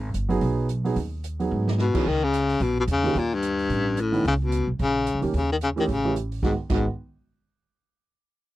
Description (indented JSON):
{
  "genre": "jazz, small-group swing and bop",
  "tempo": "220 BPM",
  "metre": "4/4",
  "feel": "swing 59% on 8ths",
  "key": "G# minor",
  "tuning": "A4 = 440 Hz",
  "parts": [
    { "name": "upright bass", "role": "bass", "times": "0.0-6.8 s", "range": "G1 to G#2", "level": "-27 LUFS", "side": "right 1 dB", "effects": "none" },
    { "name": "open jazz drum kit", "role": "drums", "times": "0.1-6.8 s", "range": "crash cymbal, hi-hat, kick drum, snare drum", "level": "-32 LUFS", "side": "right 1 dB", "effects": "none" },
    { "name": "warm concert grand piano", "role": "accompaniment", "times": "0.3-6.9 s", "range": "D#3 to G#4", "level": "-27 LUFS", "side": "right 4 dB", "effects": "none" },
    { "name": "breathy baritone saxophone", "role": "melody", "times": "1.8-6.9 s", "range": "G2 to D#3", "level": "-24 LUFS", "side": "left 3 dB", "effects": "none" }
  ],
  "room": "little or no reverb",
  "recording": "dry, close 1970s-style studio recording",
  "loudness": "-22 LUFS",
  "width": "side -15 dB against mid",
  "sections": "0.0-2.1 A section; 2.1-6.4 B section; 6.4-7.5 C section",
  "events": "drum fill 1.5",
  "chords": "0.0 G#m7; 2.1 C#sus2; 2.6 A#dim; 3.1 D#; 3.7 A7; 4.2 Bsus2; 4.8 A#dim; 5.3 D#7; 5.9 A7; 6.4 G#m7"
}